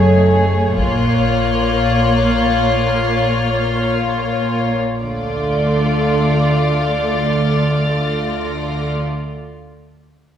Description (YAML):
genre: cinematic, suspense film score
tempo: free time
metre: none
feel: none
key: D harmonic minor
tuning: A4 = 439 Hz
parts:
  - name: dark studio violin section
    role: melody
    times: 0.0-9.0 s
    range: C#5 to D5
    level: -22 LUFS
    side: left 2 dB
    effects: none
  - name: warm studio violin section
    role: second line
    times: 0.0-9.0 s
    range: F4 to G#4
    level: -22 LUFS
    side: left 3 dB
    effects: none
  - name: dark studio viola section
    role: accompaniment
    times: 0.0-9.0 s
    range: A3 to Bb3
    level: -21 LUFS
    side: right 2 dB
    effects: none
  - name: warm chamber double bass section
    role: bass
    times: 0.0-9.0 s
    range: F#1 to D2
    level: -23 LUFS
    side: right 1 dB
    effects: none
  - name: warm studio cello section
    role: bass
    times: 0.0-9.0 s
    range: F#2 to D3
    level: -20 LUFS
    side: equal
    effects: none
  - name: celesta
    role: texture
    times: 0.0-5.0 s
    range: Db5 to Eb5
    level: -31 LUFS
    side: left 2 dB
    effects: none
  - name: taiko ensemble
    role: drums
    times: 0.8-2.1 s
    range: none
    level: -24 LUFS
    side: left 1 dB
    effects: none
  - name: clear studio violin section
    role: texture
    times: 0.8-8.9 s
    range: D6 to A6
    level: -29 LUFS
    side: left 3 dB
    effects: none
room: wet scoring stage reverb, RT60 1.6 s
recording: heard from further back in the room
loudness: -14 LUFS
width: side -9 dB against mid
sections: 0.0-5.0 A section; 5.0-9.2 B section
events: none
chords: 0.0 F#madd9; 0.8 Bbm; 5.0 Dm